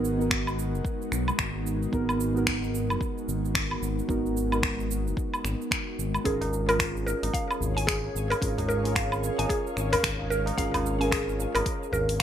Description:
organic downtempo; 111 BPM; 4/4; swing 60% on 16ths; G# dorian; A4 = 441 Hz
muted felt-like synth keys; accompaniment; 0.0-12.2 s; B3 to A#4; -31 LUFS; right 2 dB; chorus, sidechain pumping, ping-pong delay
ethereal airy pad; sustained chords; 0.0-12.2 s; G#3 to E#5; -36 LUFS; equal; ensemble chorus, built-in reverb, sidechain pumping
smooth gliding synth bass; bass; 0.0-12.2 s; F#1 to B1; -30 LUFS; left 1 dB; sidechain pumping
deep house drum kit; drums; 0.0-12.2 s; cabasa, finger snaps, hi-hat, woodblock; -30 LUFS; equal
electronic kick drum; drums; 0.3-12.2 s; -33 LUFS; left 1 dB
mallet-like synth pluck; arpeggios; 6.3-12.2 s; G#4 to G#5; -30 LUFS; equal; chorus, cassette tape, ping-pong delay
tabla; percussion; 6.4-12.2 s; -39 LUFS; right 3 dB
moderate plate reverb, RT60 1.3 s; bright 1980s-style digital production; -25 LUFS; side -10 dB against mid
0.0-12.2 A section
0.0 G#m7; 6.3 A#m7/G#

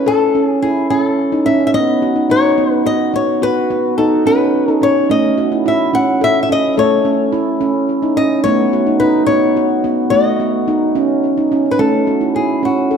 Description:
world meditative, meditative tuned percussion; 72 BPM (dotted quarters); 6/8; straight; A lydian; A4 = 440 Hz
flamenco guitar; melody; 0.0-13.0 s; F#4 to F#5; -17 LUFS; left 5 dB
handpan; arpeggios; 0.0-13.0 s; A3 to A4; -14 LUFS; right 2 dB; ping-pong delay
wet scoring stage reverb, RT60 1.8 s, studio reverb; -12 LUFS; side -7 dB against mid
0.0-11.8 A section; 11.8-13.0 B section
0.0 A; 1.7 B; 5.1 A; 8.4 B/A; 11.8 A

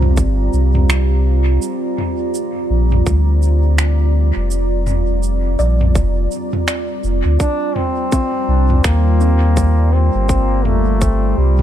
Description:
ambient dub; 83 BPM; 4/4; swing 60% on 16ths; A4 = 442 Hz
deep dark ambient pad; sustained chords; 0.0-11.6 s; G3 to Bb5; -21 LUFS; equal; chorus, built-in reverb
kalimba; arpeggios; 0.0-9.9 s; C4 to D5; -28 LUFS; equal; analog delay
warm sub bass; bass; 0.0-11.6 s; F1 to Eb2; -14 LUFS; equal
organic electronic drum kit; drums; 0.0-11.6 s; cabasa, finger snaps, toms; -22 LUFS; right 1 dB; overdrive, dub echo
electronic kick drum; drums; 0.2-11.2 s; -18 LUFS; equal; overdrive
warm trombone; melody; 7.4-11.6 s; G3 to D4; -20 LUFS; equal; analog delay
little or no reverb; echo-heavy mix; -13 LUFS; side -11 dB against mid
0.0-7.4 A section; 7.4-11.6 B section
0.0 C7(no3); 1.6 Bb; 7.4 Cm7

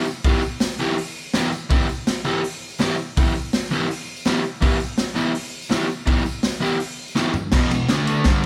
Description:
garage rock duo or trio; 165 BPM; 4/4; straight; E minor; A4 = 439 Hz
overdriven semi-hollow guitar; riff; 0.0-8.4 s; E2 to G4; -25 LUFS; equal
tambourine; percussion; 0.1-8.5 s; -43 LUFS; equal
raw garage drum kit; drums; 0.2-8.5 s; crash cymbal, hi-hat, kick drum, ride cymbal, snare drum, toms; -24 LUFS; equal
light reverb; band playing live in one room; -22 LUFS; mono
0.0-7.5 A section
drum fill 7.2-7.5
0.0 Em; 7.5 E5; 7.9 D5

